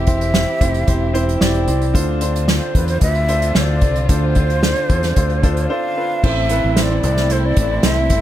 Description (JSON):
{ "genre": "piano-driven pop", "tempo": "112 BPM", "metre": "4/4", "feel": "straight", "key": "unclear", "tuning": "A4 = 440 Hz", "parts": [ { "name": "breathy shakuhachi", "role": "melody", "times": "0.0-8.2 s", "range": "C5 to F5", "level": "-22 LUFS", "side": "equal", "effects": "none" }, { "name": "warm baby grand piano", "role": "accompaniment", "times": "0.0-8.2 s", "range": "A2 to D5", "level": "-22 LUFS", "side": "equal", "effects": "none" }, { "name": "warm studio string section", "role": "sustained chords", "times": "0.0-8.2 s", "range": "D3 to G4", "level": "-30 LUFS", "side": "equal", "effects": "none" }, { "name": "fingered electric bass", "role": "bass", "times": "0.0-8.2 s", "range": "E1 to E2", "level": "-19 LUFS", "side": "equal", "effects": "none" }, { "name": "unplugged drum kit", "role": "drums", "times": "0.1-8.2 s", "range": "crash cymbal, hi-hat, kick drum, snare drum", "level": "-18 LUFS", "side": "equal", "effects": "none" }, { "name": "fingerpicked steel-string acoustic guitar", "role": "riff", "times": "6.2-8.2 s", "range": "A2 to C5", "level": "-27 LUFS", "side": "right 6 dB", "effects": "none" } ], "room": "small room ambience", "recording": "none", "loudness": "-14 LUFS", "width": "side -12 dB against mid", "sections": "0.0-6.2 A section; 6.2-8.2 B section", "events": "break 5.7-6.2", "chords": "0.0 C/E; 1.9 Dm7; 6.2 Am" }